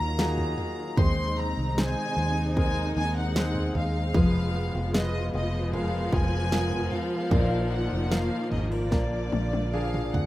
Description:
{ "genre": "pop ballad", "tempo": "76 BPM", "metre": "4/4", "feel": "straight", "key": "unclear", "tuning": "A4 = 440 Hz", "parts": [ { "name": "warm studio violin section", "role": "melody", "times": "0.0-10.3 s", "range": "D5 to C6", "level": "-33 LUFS", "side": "equal", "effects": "none" }, { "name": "clear grand piano", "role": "accompaniment", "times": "0.0-10.3 s", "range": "Bb2 to C5", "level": "-34 LUFS", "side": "left 1 dB", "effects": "none" }, { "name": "warm studio string section", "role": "sustained chords", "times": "0.0-10.3 s", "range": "Cb3 to Eb4", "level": "-33 LUFS", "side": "equal", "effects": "none" }, { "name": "picked steel-string acoustic guitar", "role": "arpeggios", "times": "0.0-10.3 s", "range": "Bb2 to C5", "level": "-34 LUFS", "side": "left 2 dB", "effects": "none" }, { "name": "vintage muted fingered electric bass", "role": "bass", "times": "0.0-10.3 s", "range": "F1 to Eb2", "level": "-29 LUFS", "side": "equal", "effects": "none" }, { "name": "pop drum kit", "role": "drums", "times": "0.2-10.3 s", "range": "kick drum, snare drum, toms", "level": "-27 LUFS", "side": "equal", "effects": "none" } ], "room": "little or no reverb", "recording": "rough home demo mix", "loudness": "-24 LUFS", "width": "side -15 dB against mid", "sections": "0.0-10.3 A section", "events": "drum fill 8.9-10.3", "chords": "0.0 Ebmadd9; 1.0 Ab; 4.1 Fdim; 7.3 Bbsus4; 8.9 Bb" }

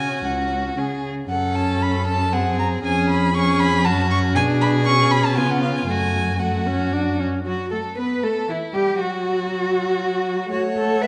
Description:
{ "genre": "quick classical-period movement for string quartet", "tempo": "117 BPM", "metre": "3/4", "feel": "straight", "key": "F# minor", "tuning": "A4 = 439 Hz", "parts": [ { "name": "warm violin", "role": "melody", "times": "0.0-11.1 s", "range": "E4 to C#6", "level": "-27 LUFS", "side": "equal", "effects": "none" }, { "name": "rich violin", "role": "second line", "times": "0.0-11.1 s", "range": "E4 to E5", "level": "-29 LUFS", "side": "equal", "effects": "none" }, { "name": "dark viola", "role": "accompaniment", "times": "0.0-11.1 s", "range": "E3 to D4", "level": "-27 LUFS", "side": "equal", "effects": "none" }, { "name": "dark cello", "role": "bass", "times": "0.0-11.1 s", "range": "C#2 to B4", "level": "-25 LUFS", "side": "equal", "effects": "none" } ], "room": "wet recital hall reverb, RT60 1.6 s", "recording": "nothing above 10.5 kHz", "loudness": "-21 LUFS", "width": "mono", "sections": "0.0-7.5 A section; 7.5-11.1 A section", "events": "none", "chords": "0.0 F#5/C#; 1.3 F#m; 2.3 G#7/F#; 2.8 C#/E#; 3.8 F#m; 4.4 G#dim/B; 5.4 C#7; 5.9 F#m; 8.5 Em; 9.0 N.C.; 10.5 F#m/A" }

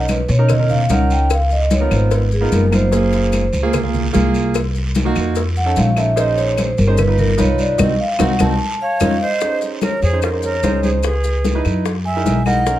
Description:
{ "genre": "Afro-Cuban jazz", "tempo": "148 BPM", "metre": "4/4", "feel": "straight", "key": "Bb minor", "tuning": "A4 = 436 Hz", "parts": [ { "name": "vibraphone with soft mallets", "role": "melody", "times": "0.0-12.8 s", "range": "Ab4 to A5", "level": "-20 LUFS", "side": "equal", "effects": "none" }, { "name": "clear concert grand piano", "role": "accompaniment", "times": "0.0-12.8 s", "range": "Bb3 to C5", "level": "-22 LUFS", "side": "right 4 dB", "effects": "none" }, { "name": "upright bass", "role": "bass", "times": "0.0-12.8 s", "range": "Gb1 to B2", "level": "-17 LUFS", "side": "equal", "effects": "none" }, { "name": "claves", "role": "percussion", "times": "0.1-12.7 s", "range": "none", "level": "-29 LUFS", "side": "left 7 dB", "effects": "none" }, { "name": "congas", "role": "percussion", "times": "0.1-12.8 s", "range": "none", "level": "-22 LUFS", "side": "left 2 dB", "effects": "none" }, { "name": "cowbell and bongos", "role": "percussion", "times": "0.1-12.8 s", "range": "none", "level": "-28 LUFS", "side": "left 6 dB", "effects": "none" }, { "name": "guiro", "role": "percussion", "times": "0.1-12.8 s", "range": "none", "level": "-33 LUFS", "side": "right 3 dB", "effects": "none" }, { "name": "maracas", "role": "percussion", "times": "0.1-12.8 s", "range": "none", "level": "-34 LUFS", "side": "left 7 dB", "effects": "none" }, { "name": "breathy bright jazz flute", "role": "second line", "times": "8.8-12.8 s", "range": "F4 to Fb5", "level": "-25 LUFS", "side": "right 3 dB", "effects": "none" } ], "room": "light reverb", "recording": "close, detailed microphones", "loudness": "-14 LUFS", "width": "side -13 dB against mid", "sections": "0.0-9.4 A section; 9.4-12.8 B section", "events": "vibraphone solo 0.0-9.4; band accent 7.8-9.4", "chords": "0.0 Bmaj9; 1.3 Db13; 2.9 Gbmaj9; 4.5 Cm7b5; 5.4 F7b13; 6.2 Bbm11; 7.0 Gaug7; 7.8 Cdim; 8.6 Faug7; 9.4 Bbm11; 11.0 Dbm7; 11.9 Gb13" }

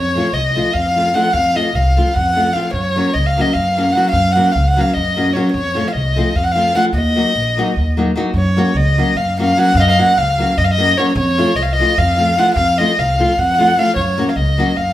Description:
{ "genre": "balkan folk, Balkan wedding band", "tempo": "300 BPM (eighths)", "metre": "7/8", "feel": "straight", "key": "unclear", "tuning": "A4 = 440 Hz", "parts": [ { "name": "dark violin", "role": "melody", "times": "0.0-14.9 s", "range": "Db5 to Gb5", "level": "-15 LUFS", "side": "equal", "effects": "none" }, { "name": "upright bass", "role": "bass", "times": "0.0-14.9 s", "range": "Bb1 to Gb2", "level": "-18 LUFS", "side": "equal", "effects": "none" }, { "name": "nylon-string guitar", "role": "accompaniment", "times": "0.2-14.7 s", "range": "F3 to Gb4", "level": "-19 LUFS", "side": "left 1 dB", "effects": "none" } ], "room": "wet large studio reverb, RT60 0.9 s", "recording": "band playing live in one room", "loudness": "-13 LUFS", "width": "side -13 dB against mid", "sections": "0.0-8.4 A section; 8.4-14.9 A section", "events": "none", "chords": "0.0 F; 2.7 Gb; 5.5 F; 7.0 Ebm; 8.4 Gb; 11.2 F; 13.9 Gb" }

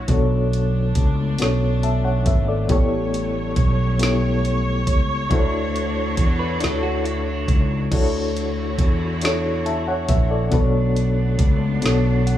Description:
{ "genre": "slow six-eight R&B", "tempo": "46 BPM (dotted quarters)", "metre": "6/8", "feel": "straight", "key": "D major", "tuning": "A4 = 440 Hz", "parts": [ { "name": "reed electric piano", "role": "accompaniment", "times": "0.0-12.4 s", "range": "A3 to A5", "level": "-24 LUFS", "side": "left 4 dB", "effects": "medium tremolo" }, { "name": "rich studio string section", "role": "sustained chords", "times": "0.0-12.4 s", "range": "D3 to C#5", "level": "-28 LUFS", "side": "right 3 dB", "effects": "none" }, { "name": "fretless electric bass", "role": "bass", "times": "0.0-12.4 s", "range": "G#1 to E2", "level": "-22 LUFS", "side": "equal", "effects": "lush chorus" }, { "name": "smooth R&B drum kit", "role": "drums", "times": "0.1-12.4 s", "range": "crash cymbal, hi-hat, kick drum, snare drum", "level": "-21 LUFS", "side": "equal", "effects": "none" }, { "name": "semi-hollow electric guitar", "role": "second line", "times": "6.4-7.9 s", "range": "D4 to B4", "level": "-30 LUFS", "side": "right 4 dB", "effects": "spring reverb" } ], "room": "little or no reverb", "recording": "studio ambience", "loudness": "-18 LUFS", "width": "side -12 dB against mid", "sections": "0.0-7.9 A section; 7.9-12.4 A section", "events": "reed electric piano fill 11.8-12.4", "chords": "0.1 Bm9; 2.7 A9; 5.3 Dmaj9; 10.5 Bm9" }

